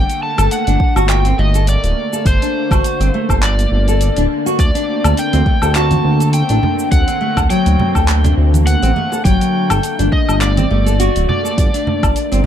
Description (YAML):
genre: organic downtempo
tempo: 103 BPM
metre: 4/4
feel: swing 55% on 16ths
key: unclear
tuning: A4 = 440 Hz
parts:
  - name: overdriven slide guitar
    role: melody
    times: 0.0-12.5 s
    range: C5 to A5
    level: -21 LUFS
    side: equal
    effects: tape echo
  - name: warm analog pad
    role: sustained chords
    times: 0.0-12.5 s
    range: D3 to C4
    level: -24 LUFS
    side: right 1 dB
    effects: chorus, sidechain pumping
  - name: smooth synth bass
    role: bass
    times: 0.0-12.4 s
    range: D1 to D2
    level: -14 LUFS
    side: equal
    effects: sidechain pumping
  - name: deep house drum kit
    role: drums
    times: 0.1-12.4 s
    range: cabasa, handclaps, hi-hat, woodblock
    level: -22 LUFS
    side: left 1 dB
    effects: none
  - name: nylon-string guitar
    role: arpeggios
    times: 0.4-12.4 s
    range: F#3 to A4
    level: -19 LUFS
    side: left 2 dB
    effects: tape echo
  - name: electronic kick drum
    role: drums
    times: 0.8-12.1 s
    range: none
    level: -15 LUFS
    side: equal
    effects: none
  - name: congas and bongos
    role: percussion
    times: 5.3-12.5 s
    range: none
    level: -21 LUFS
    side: right 2 dB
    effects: none
room: little or no reverb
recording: dark, warm production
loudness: -12 LUFS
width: side -10 dB against mid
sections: 0.0-12.5 A section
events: none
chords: 0.0 Gmadd9; 4.6 D7sus4; 9.2 Gmadd9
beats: 0.51 1.09 1.68 | 2.26 2.84 3.42 4.01 | 4.59 5.17 5.75 6.34 | 6.92 7.50 8.09 8.67 | 9.25 9.83 10.41 11.00 | 11.58 12.16